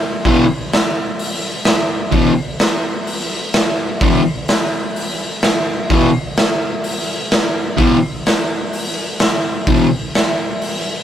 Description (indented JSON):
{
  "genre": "garage rock duo or trio",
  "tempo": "127 BPM",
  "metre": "4/4",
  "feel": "straight",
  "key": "unclear",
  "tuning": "A4 = 439 Hz",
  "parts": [
    { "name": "fuzz guitar", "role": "riff", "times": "0.3-9.9 s", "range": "E2 to E3", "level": "-13 LUFS", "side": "left 1 dB", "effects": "distortion" },
    { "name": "raw garage drum kit", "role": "drums", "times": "0.3-10.7 s", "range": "hi-hat, kick drum, snare drum", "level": "-16 LUFS", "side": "equal", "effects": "none" }
  ],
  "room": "wet booth ambience, RT60 0.2 s",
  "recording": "rough rehearsal-room recording, tube saturation",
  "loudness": "-14 LUFS",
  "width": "side -10 dB against mid",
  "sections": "0.0-11.0 A section",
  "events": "none",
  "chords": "0.0 E5"
}